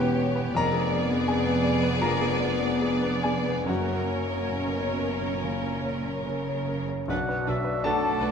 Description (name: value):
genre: classical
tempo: 67-83 BPM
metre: 4/4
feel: rubato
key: unclear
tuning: A4 = 440 Hz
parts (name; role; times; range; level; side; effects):
- warm grand piano; melody; 0.0-8.3 s; B1 to A#5; -28 LUFS; left 3 dB; none
- warm studio violin section; melody; 0.0-8.3 s; B4 to D5; -35 LUFS; left 1 dB; none
- clear chamber violin section; second line; 0.0-8.3 s; G4 to A#4; -35 LUFS; left 2 dB; none
- warm studio viola section; accompaniment; 0.0-8.3 s; B3 to F#4; -33 LUFS; right 2 dB; none
- dark French horn section; sustained chords; 0.0-8.3 s; F#3 to D4; -34 LUFS; left 4 dB; none
- dark studio cello section; bass; 0.0-8.3 s; E2 to A3; -33 LUFS; right 4 dB; none
- rich studio double bass section; bass; 0.0-8.3 s; E1 to B1; -34 LUFS; right 5 dB; none
- clear oboe; second line; 7.1-8.3 s; D5 to F#5; -31 LUFS; right 3 dB; none
- mellow clarinet; second line; 7.1-8.3 s; F#4; -36 LUFS; left 5 dB; none
- mellow bassoon; accompaniment; 7.1-8.3 s; D4; -34 LUFS; left 1 dB; none
- mellow silver concert flute; second line; 7.8-8.3 s; A5; -32 LUFS; left 2 dB; none
room: wet scoring stage reverb, RT60 2.0 s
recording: none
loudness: -24 LUFS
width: side -7 dB against mid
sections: 0.0-7.1 A section; 7.1-8.3 B section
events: none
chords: 0.0 C#m7b5/E; 0.6 Fdim7; 3.7 F#; 7.1 Bm